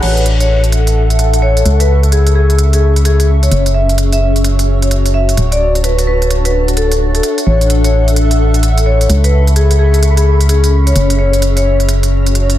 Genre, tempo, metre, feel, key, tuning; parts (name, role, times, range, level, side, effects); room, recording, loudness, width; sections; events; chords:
UK garage, two-step garage; 129 BPM; 4/4; swing 62% on 16ths; A major; A4 = 440 Hz
vibraphone with medium hard mallets; melody; 0.0-11.8 s; G#4 to E5; -18 LUFS; left 3 dB; vintage 12-bit sampler grit, tape echo
organ-like FM bass; bass; 0.0-12.6 s; D1 to C#2; -11 LUFS; equal
garage drum kit; drums; 0.0-12.6 s; crash cymbal, hi-hat; -22 LUFS; right 2 dB
granular cloud pad; texture; 0.0-12.6 s; C#4 to C#6; -18 LUFS; left 1 dB; built-in reverb
little or no reverb; dense, heavily limited modern master, vinyl crackle; -9 LUFS; side -13 dB against mid
0.0-12.6 A section
0.0 Amaj9; 1.7 C#m7; 3.5 F#m7; 5.4 D; 7.5 Aadd9; 9.1 C#m7; 11.0 F#m7